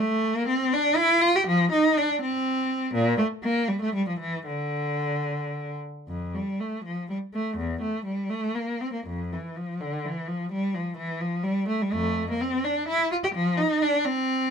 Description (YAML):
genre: classical, baroque-style suite movement for unaccompanied cello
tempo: 70-86 BPM (dotted quarters)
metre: 6/8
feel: rubato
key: D minor, F major from 6.1 s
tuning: A4 = 441 Hz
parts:
  - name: rich cello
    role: solo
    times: 0.0-14.5 s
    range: E2 to G4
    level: -24 LUFS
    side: equal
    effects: none
room: light reverb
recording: none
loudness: -24 LUFS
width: side -6 dB against mid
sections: 0.0-6.1 A section; 6.1-14.5 A section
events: none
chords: none